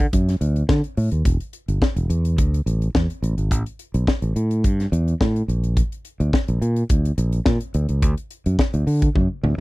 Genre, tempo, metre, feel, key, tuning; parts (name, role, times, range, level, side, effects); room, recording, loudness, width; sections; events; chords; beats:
disco; 106 BPM; 4/4; straight; D major; A4 = 441 Hz
fingered electric bass; bass; 0.0-9.6 s; E1 to D3; -19 LUFS; equal
modern studio drum kit; drums; 0.0-9.6 s; hi-hat, kick drum, snare drum, toms; -21 LUFS; equal
little or no reverb; dry, close 1970s-style studio recording; -18 LUFS; side -20 dB against mid
0.0-9.6 A section
drum fill 9.2-9.6
0.13 0.69 | 1.25 1.82 2.38 2.94 | 3.51 4.07 4.64 5.20 | 5.76 6.33 6.89 7.46 | 8.02 8.59 9.15